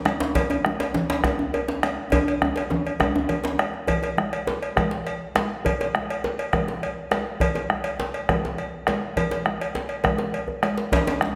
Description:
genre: west african traditional, West African drum ensemble.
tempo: 136 BPM (dotted quarters).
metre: 12/8.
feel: straight.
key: none.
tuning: none.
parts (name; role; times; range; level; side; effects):
bombo; percussion; 0.1-11.3 s; none; -29 LUFS; equal; none.
congas; percussion; 0.1-11.3 s; none; -32 LUFS; equal; none.
cowbell; percussion; 0.1-11.2 s; none; -32 LUFS; equal; none.
djembe; percussion; 0.1-3.6, 10.9-11.3 s; none; -28 LUFS; equal; none.
djembe; percussion; 0.4-11.2 s; none; -32 LUFS; equal; none.
room: wet recital hall reverb, RT60 1.7 s.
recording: none.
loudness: -25 LUFS.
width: mono.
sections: 0.0-3.9 A section; 3.9-11.4 B section.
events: drum fill 2.1-3.9, 10.5-10.9.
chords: none.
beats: | 0.35 0.79 1.24 1.68 | 2.12 2.56 3.01 3.45 | 3.89 4.33 4.77 5.21 | 5.65 6.09 6.53 6.97 | 7.41 7.85 8.29 8.73 | 9.16 9.60 10.04 10.48 | 10.91 11.35.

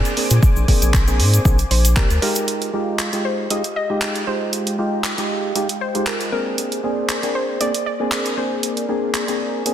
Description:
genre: deep house.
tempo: 117 BPM.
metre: 4/4.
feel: swing 54% on 16ths.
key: F dorian.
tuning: A4 = 440 Hz.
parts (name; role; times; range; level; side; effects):
warm analog pad; sustained chords; 0.0-9.7 s; Ab3 to D6; -29 LUFS; right 1 dB; chorus, sidechain pumping.
percussive organ stab; stabs; 0.0-9.7 s; Ab3 to Ab4; -23 LUFS; equal; wide subtle chorus, sidechain pumping, dub echo.
house drum kit; drums; 0.1-9.7 s; handclaps, hi-hat; -24 LUFS; right 1 dB; soft clipping on snare.
cabasa; percussion; 0.1-2.5 s; none; -27 LUFS; left 2 dB; none.
round analog bass; bass; 0.3-2.2 s; Bb1 to Bb2; -16 LUFS; equal; sidechain pumping.
electronic kick drum; drums; 0.4-2.1 s; none; -16 LUFS; equal; overdrive.
soft round pluck; melody; 1.7-9.7 s; Bb4 to Eb5; -26 LUFS; left 1 dB; chorus, dub echo.
room: moderate lush hall reverb, RT60 2.0 s.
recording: dense, heavily limited modern master.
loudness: -17 LUFS.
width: side -10 dB against mid.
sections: 0.0-2.5 A section; 2.5-9.7 B section.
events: filter sweep on synth stab 2.5-9.7; filter sweep on analog synth pad 2.5-9.7.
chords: 0.0 Bb9; 2.5 Fm9.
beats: | 0.43 0.94 1.45 1.97 | 2.48 2.99 3.50 4.02 | 4.53 5.04 5.55 6.07 | 6.58 7.09 7.61 8.12 | 8.63 9.14 9.66.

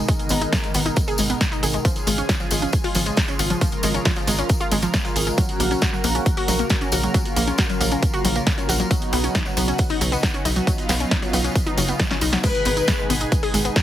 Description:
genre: uplifting trance.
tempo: 136 BPM.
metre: 4/4.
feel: straight.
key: G# dorian.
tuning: A4 = 440 Hz.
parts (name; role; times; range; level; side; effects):
analog string pad; sustained chords; 0.0-13.8 s; B2 to A#4; -26 LUFS; equal; ensemble chorus, sidechain pumping.
analog pluck; arpeggios; 0.0-13.7 s; E#3 to G#4; -26 LUFS; left 1 dB; chorus, sidechain pumping, tape echo.
tight sequencer bass; bass; 0.0-13.7 s; F#1 to B1; -25 LUFS; equal; sidechain pumping.
electronic kick drum; drums; 0.1-13.8 s; none; -22 LUFS; equal; overdrive.
punchy analog drum machine; drums; 0.1-13.8 s; crash cymbal, hi-hat, snare drum; -26 LUFS; right 1 dB; none.
tambourine; percussion; 0.1-13.8 s; none; -29 LUFS; left 1 dB; none.
dark studio violin section; second line; 12.4-13.2 s; B4; -25 LUFS; left 4 dB; tape echo.
room: light reverb.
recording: heavily compressed radio sound, multiband compression.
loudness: -18 LUFS.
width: side -12 dB against mid.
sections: 0.0-13.8 A section.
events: drum fill 12.1-12.4.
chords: 0.0 G#m; 1.8 C#/G#; 5.4 F#/A#; 8.9 Badd9; 12.4 G#m.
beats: | 0.08 0.53 0.97 1.41 | 1.85 2.29 2.73 3.17 | 3.61 4.05 4.50 4.94 | 5.38 5.82 6.26 6.70 | 7.14 7.58 8.03 8.47 | 8.91 9.35 9.79 10.23 | 10.67 11.11 11.55 12.00 | 12.44 12.88 13.32 13.76.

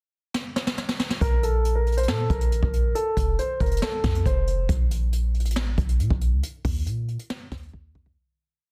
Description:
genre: hip hop, trap.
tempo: 138 BPM.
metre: 4/4.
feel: half-time.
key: unclear.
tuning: A4 = 440 Hz.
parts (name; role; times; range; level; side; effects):
jazz brush drum kit; drums; 0.3-8.2 s; hi-hat, kick drum, snare drum; -28 LUFS; equal; none.
dark concert grand piano; melody; 1.2-4.7 s; A4 to C5; -30 LUFS; equal; low-pass filter, digital delay.
warm 808-style bass; bass; 1.2-8.2 s; F1 to Bb2; -26 LUFS; equal; none.
room: small room ambience.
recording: dense, heavily limited modern master.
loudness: -24 LUFS.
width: mono.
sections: 0.0-1.2 pickup bar; 1.2-8.2 verse.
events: drum fill 0.3-1.2, 7.7-8.2; break 4.7-8.2; fade-out 6.4-8.2.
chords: 0.0 N.C.; 3.0 F; 4.7 N.C.; 6.4 Eb5.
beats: 0.34 0.78 | 1.21 1.65 2.08 2.52 | 2.95 3.39 3.82 4.26 | 4.69 5.12 5.56 6.00 | 6.43 6.87 7.30 7.73.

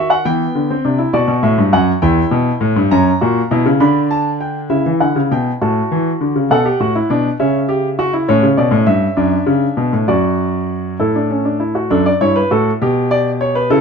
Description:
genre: classical, baroque-style 3-part fugue for grand piano.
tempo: 67 BPM (dotted quarters).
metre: 6/8.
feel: straight.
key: E minor, D major from 8.3 s.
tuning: A4 = 440 Hz.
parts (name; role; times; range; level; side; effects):
warm concert grand piano; solo; 0.0-13.8 s; E2 to B5; -13 LUFS; equal; none.
room: light reverb.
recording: dark, warm production.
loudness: -13 LUFS.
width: side -6 dB against mid.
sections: 0.0-4.7 A section; 4.7-11.9 B section; 11.9-13.8 C section.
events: none.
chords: 0.3 Em; 1.1 Bm; 2.0 Em; 2.9 F#7; 3.8 Bm/D; 4.7 Em13; 5.6 D/A; 6.5 G; 7.4 C#dim; 8.3 A7; 9.2 D/F#; 11.0 A; 11.9 D/F#; 12.8 G/B.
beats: 0.27 | 1.14 2.02 | 2.91 3.80 | 4.70 5.61 | 6.50 7.39 | 8.27 9.16 | 10.07 10.99 | 11.90 12.81 | 13.70.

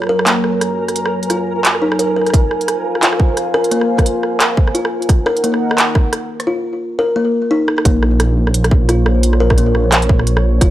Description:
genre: half-time drum and bass.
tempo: 174 BPM.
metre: 4/4.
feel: swing 58% on 16ths, half-time.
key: Bb minor.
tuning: A4 = 442 Hz.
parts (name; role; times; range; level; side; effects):
dark analog pad; sustained chords; 0.0-10.7 s; Gb3 to Bb5; -22 LUFS; right 1 dB; chorus, sidechain pumping.
kalimba; arpeggios; 0.0-10.7 s; Bb3 to Bb4; -18 LUFS; left 2 dB; tape echo.
industrial drum kit; drums; 0.0-10.7 s; handclaps, hi-hat, rim click; -17 LUFS; right 1 dB; high-pass filter on hats, high-pass filter on snare.
flickering grainy texture; texture; 0.0-6.5 s; Bb4; -24 LUFS; right 4 dB; built-in reverb.
electronic kick drum; drums; 2.3-10.7 s; none; -12 LUFS; equal; overdrive.
dark detuned saw bass; bass; 7.9-10.7 s; Gb1 to Bb1; -14 LUFS; equal; none.
room: light reverb.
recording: dry, gritty hardware recording, transformer saturation.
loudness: -12 LUFS.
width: side -14 dB against mid.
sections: 0.0-7.9 A section; 7.9-10.7 B section.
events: build-up 0.0-7.9; drum fill 7.6; drop 7.9-10.7.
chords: 0.0 Gb; 2.3 Fm; 5.1 Ebm; 7.9 Bbmadd9.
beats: 0.27 0.61 | 0.96 1.30 1.65 1.99 | 2.34 2.68 3.02 3.37 | 3.71 4.06 4.41 4.75 | 5.09 5.44 5.78 6.13 | 6.47 6.82 7.16 7.51 | 7.85 8.20 8.54 8.89 | 9.23 9.58 9.92 10.27 | 10.61.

